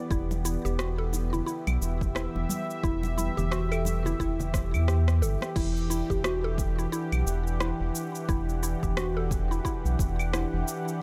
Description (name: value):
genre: organic downtempo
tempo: 88 BPM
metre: 4/4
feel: swing 59% on 16ths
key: E minor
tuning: A4 = 440 Hz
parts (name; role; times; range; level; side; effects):
- warm analog pad; sustained chords; 0.0-11.0 s; E3 to F#5; -36 LUFS; equal; chorus, tremolo, sidechain pumping
- mallet-like synth pluck; arpeggios; 0.0-11.0 s; E4 to A4; -36 LUFS; equal; chorus, phaser, digital delay
- round analog bass; bass; 0.1-10.6 s; E1 to E2; -31 LUFS; equal; sidechain pumping
- deep house drum kit; drums; 0.1-11.0 s; claves, crash cymbal, rim click, shaker; -39 LUFS; equal; overdrive, small room reverb
- electronic kick drum; drums; 0.1-10.2 s; none; -34 LUFS; equal; overdrive, small room reverb
- congas; percussion; 0.3-5.5 s; none; -40 LUFS; equal; none
room: little or no reverb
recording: none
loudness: -28 LUFS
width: mono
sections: 0.0-5.6 A section; 5.6-11.0 B section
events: drum fill 4.5-5.6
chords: 0.0 Em9